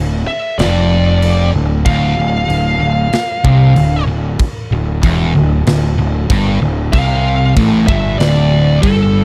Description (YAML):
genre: heavy metal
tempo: 95 BPM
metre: 4/4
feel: straight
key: D minor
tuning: A4 = 440 Hz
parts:
  - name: sludgy distorted guitar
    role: riff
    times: 0.0-9.2 s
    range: D2 to C3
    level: -16 LUFS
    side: equal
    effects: overdrive
  - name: fuzz picked electric bass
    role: bass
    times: 0.0-9.2 s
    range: D1 to C2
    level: -18 LUFS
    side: equal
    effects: overdrive
  - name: high-gain lead guitar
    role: melody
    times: 0.3-9.2 s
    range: A4 to F5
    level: -21 LUFS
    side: equal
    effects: distortion, digital delay
  - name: tight metal drum kit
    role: drums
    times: 0.6-9.0 s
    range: crash cymbal, kick drum, snare drum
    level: -22 LUFS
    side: equal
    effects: none
room: small room ambience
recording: dark, warm production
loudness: -13 LUFS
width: mono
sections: 0.0-9.2 A section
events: half time 0.0-9.2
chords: 0.0 Dm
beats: 0.59 1.23 | 1.86 2.49 3.13 3.76 | 4.40 5.03 5.66 6.30 | 6.93 7.57 8.20 8.83